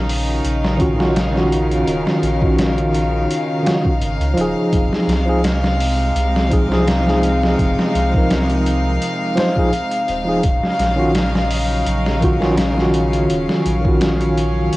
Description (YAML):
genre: trip hop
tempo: 84 BPM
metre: 4/4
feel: swing 54% on 16ths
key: unclear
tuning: A4 = 440 Hz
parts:
  - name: rich chamber string section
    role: sustained chords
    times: 0.0-14.8 s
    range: C3 to F5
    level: -21 LUFS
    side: left 1 dB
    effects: vintage 12-bit sampler grit, plate reverb
  - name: soft dub sub bass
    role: bass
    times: 0.0-14.7 s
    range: Eb1 to Db2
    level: -21 LUFS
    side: equal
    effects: tube saturation
  - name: trip hop sampler-style drum kit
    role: drums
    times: 0.1-14.8 s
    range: hi-hat, kick drum, snare drum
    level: -20 LUFS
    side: equal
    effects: cassette tape
  - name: tine electric piano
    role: accompaniment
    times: 0.8-14.8 s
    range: Eb3 to C5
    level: -19 LUFS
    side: equal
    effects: tremolo, tape echo
room: light reverb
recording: home recording on cassette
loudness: -15 LUFS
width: side -19 dB against mid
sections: 0.0-14.8 A section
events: none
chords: 0.0 Ebm9; 4.7 Fm7; 10.4 Ebm9